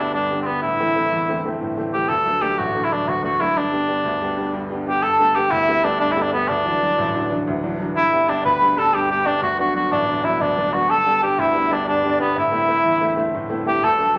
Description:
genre	celtic folk, Celtic slip jig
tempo	123 BPM (dotted quarters)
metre	9/8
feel	straight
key	G major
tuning	A4 = 440 Hz
part	warm cor anglais	melody	0.0-14.2 s	B3 to B4	-22 LUFS	equal	none
part	bright upright piano	accompaniment	0.0-14.2 s	A1 to E4	-27 LUFS	equal	none
part	pedal harmonium	drone	0.0-14.2 s	G2 to D3	-36 LUFS	equal	none
part	mellow wooden flute	second line	4.9-14.2 s	B4 to B5	-26 LUFS	equal	none
room	wet large studio reverb, RT60 1.1 s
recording	faint mains hum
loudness	-20 LUFS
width	mono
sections	0.0-5.0 A section; 5.0-14.2 A section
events	none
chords	0.0 G; 0.6 Am; 2.1 D; 3.6 G; 5.0 Gadd9; 6.5 Dadd9; 8.0 G; 9.4 D6; 10.9 G; 12.4 Am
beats	0.14 | 0.63 1.12 1.61 | 2.10 2.59 3.08 | 3.57 4.05 4.54 | 5.03 5.52 6.01 | 6.50 6.98 7.47 | 7.96 8.45 8.94 | 9.43 9.91 10.40 | 10.89 11.38 11.87 | 12.36 12.85 13.34 | 13.83

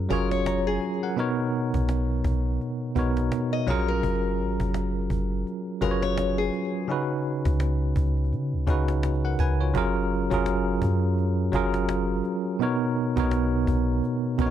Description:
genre	contemporary R&B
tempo	84 BPM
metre	4/4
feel	swing 58% on 16ths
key	F# major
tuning	A4 = 440 Hz
part	barky tine electric piano	accompaniment	0.0-14.5 s	B2 to A#5	-25 LUFS	right 1 dB	fast stereo tremolo
part	soft 808-style bass	bass	0.0-14.5 s	F#1 to C#3	-26 LUFS	equal	none
part	picked old ladder-braced acoustic guitar	arpeggios	0.1-6.9 s	G#4 to D#5	-31 LUFS	left 8 dB	digital delay
part	cajon	drums	0.1-14.5 s	none	-33 LUFS	equal	none
room	little or no reverb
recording	dark, warm production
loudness	-23 LUFS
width	side -10 dB against mid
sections	0.0-9.7 A section; 9.7-14.5 B section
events	none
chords	0.0 F#maj9; 1.2 Bmaj9; 3.7 F#maj9; 6.9 C#7sus4; 9.7 F#maj9; 12.6 Bmaj9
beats	0.46 | 1.18 1.89 2.60 3.32 | 4.03 4.75 5.46 6.18 | 6.89 7.61 8.32 9.03 | 9.75 10.46 11.18 11.89 | 12.61 13.32 14.03

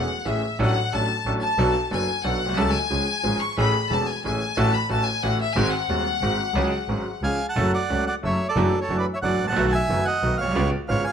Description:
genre	tango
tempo	181 BPM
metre	3/4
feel	rubato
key	F# minor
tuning	A4 = 441 Hz
part	clear chamber violin section	second line	0.0-7.2 s	E5 to C#6	-25 LUFS	left 4 dB	none
part	bright concert grand piano	accompaniment	0.0-11.0 s	D#1 to A4	-24 LUFS	right 1 dB	none
part	warm double bass	bass	0.0-11.0 s	E1 to D#2	-27 LUFS	equal	none
part	bandoneon	melody	7.2-11.1 s	A4 to A5	-24 LUFS	right 3 dB	none
room	moderate studio reverb, RT60 0.8 s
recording	none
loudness	-20 LUFS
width	side -8 dB against mid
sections	0.0-7.6 A section; 7.6-11.1 B section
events	violin section solo 0.0-7.6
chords	0.0 Amaj7; 0.6 Dmaj7/A; 1.6 Bm7; 2.6 F#m/C#; 2.9 C#; 3.6 Amaj7; 4.6 F#m7/A; 5.6 G#7; 6.5 C#sus4; 7.2 C#; 7.6 F#m; 8.6 Dadd9/F#; 9.6 B7; 10.5 C#7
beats	0.26 | 0.60 0.93 1.26 | 1.59 1.91 2.24 | 2.57 2.90 3.24 | 3.57 3.91 4.24 | 4.57 4.90 5.23 | 5.56 5.89 6.22 | 6.55 6.88 7.22 | 7.56 7.89 8.23 | 8.56 8.89 9.22 | 9.55 9.89 10.22 | 10.55 10.88

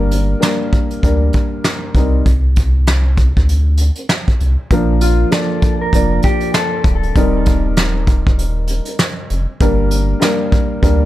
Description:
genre	hip hop, boom-bap hip-hop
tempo	98 BPM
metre	4/4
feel	swing 60% on 16ths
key	Bb major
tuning	A4 = 440 Hz
part	dark concert grand piano	accompaniment	0.0-11.1 s	F3 to D5	-18 LUFS	equal	cassette tape, high-pass filter, low-pass filter
part	saturated sub bass	bass	0.0-11.1 s	D1 to D2	-15 LUFS	equal	none
part	vintage brush drum kit	drums	0.1-11.0 s	hi-hat, kick drum, rim click, snare drum	-16 LUFS	equal	none
part	mellow electric guitar	melody	5.0-6.8 s	F4 to Bb4	-21 LUFS	left 2 dB	high-pass filter, low-pass filter, plate reverb, ping-pong delay
room	little or no reverb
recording	none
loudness	-12 LUFS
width	side -15 dB against mid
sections	0.0-4.7 A section; 4.7-11.1 B section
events	none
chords	0.0 Gm; 2.0 N.C.; 4.7 Bb; 7.2 Eb6; 9.6 Gm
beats	0.42 1.03 1.65 | 2.26 2.87 3.48 4.10 | 4.71 5.32 5.93 6.55 | 7.16 7.77 8.38 8.99 | 9.61 10.22 10.83

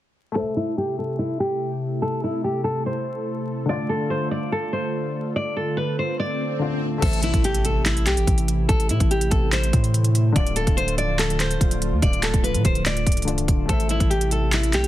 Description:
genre	hip hop, trap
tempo	144 BPM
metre	4/4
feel	half-time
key	A minor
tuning	A4 = 440 Hz
part	dark grand piano	accompaniment	0.3-14.9 s	D3 to E5	-31 LUFS	left 5 dB	low-pass filter
part	nylon-string guitar	melody	0.4-14.9 s	E4 to D5	-25 LUFS	equal	low-pass filter, tape echo
part	warm analog pad	sustained chords	0.4-14.9 s	C3 to A4	-29 LUFS	right 1 dB	chorus, low-pass filter
part	swell and impact	sound effects	5.9-8.7 s	none	-32 LUFS	left 1 dB	none
part	long sustained 808-style bass	bass	7.0-14.9 s	C1 to A2	-23 LUFS	equal	none
part	trap drum kit	drums	7.0-14.9 s	crash cymbal, handclaps, hi-hat, kick drum	-22 LUFS	equal	none
room	little or no reverb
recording	dense, heavily limited modern master, vinyl crackle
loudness	-20 LUFS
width	side -14 dB against mid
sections	0.4-7.0 A section; 7.0-14.9 B section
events	filter sweep 0.4-7.0; swell 5.9-7.0; impact 7.0-8.7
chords	0.4 Am; 3.7 Dm; 7.0 Am; 10.4 Dm; 13.7 Am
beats	| 0.36 0.77 1.19 1.61 | 2.02 2.44 2.86 3.27 | 3.69 4.11 4.52 4.94 | 5.36 5.77 6.19 6.61 | 7.02 7.44 7.86 8.27 | 8.69 9.11 9.52 9.94 | 10.36 10.77 11.19 11.61 | 12.02 12.44 12.86 13.27 | 13.69 14.11 14.52

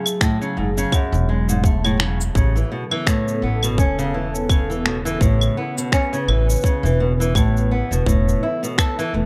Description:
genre	folktronica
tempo	84 BPM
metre	4/4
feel	swing 56% on 16ths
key	A major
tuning	A4 = 440 Hz
part	warbly tape-like pad	sustained chords	0.0-9.3 s	C#3 to B4	-29 LUFS	equal	chorus, built-in reverb
part	flamenco guitar	arpeggios	0.0-9.3 s	F#2 to A4	-25 LUFS	equal	tape echo
part	electronic claves, cabasa and finger snaps	drums	0.1-9.1 s	none	-26 LUFS	equal	small room ambience
part	electronic kick drum	drums	0.2-8.9 s	none	-21 LUFS	equal	small room ambience
part	upright bass	bass	0.6-9.3 s	E1 to A1	-23 LUFS	equal	none
room	light reverb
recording	dark, warm production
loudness	-19 LUFS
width	mono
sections	0.0-9.3 A section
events	none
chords	0.0 F#madd9; 2.4 Aadd9; 8.1 Esus4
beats	0.21 0.93 1.64 | 2.35 3.07 3.78 4.50 | 5.21 5.92 6.64 7.35 | 8.07 8.78

